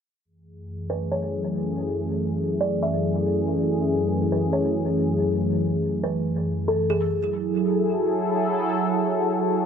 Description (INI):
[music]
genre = hip hop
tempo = 140 BPM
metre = 4/4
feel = half-time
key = F# minor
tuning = A4 = 438 Hz
[part]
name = sweeping resonant pad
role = sustained chords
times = 0.3-9.7 s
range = F#2 to A4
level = -22 LUFS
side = equal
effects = chorus
[part]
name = kalimba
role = melody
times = 0.9-7.1 s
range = G#4 to E5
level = -29 LUFS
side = right 1 dB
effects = dub echo
[sound]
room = moderate plate reverb, RT60 3.7 s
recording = echo-heavy mix, low-pass filter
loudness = -22 LUFS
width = side -7 dB against mid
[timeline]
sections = 0.3-7.1 A section; 7.1-9.7 B section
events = filter sweep 0.3-7.1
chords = 0.3 F#m9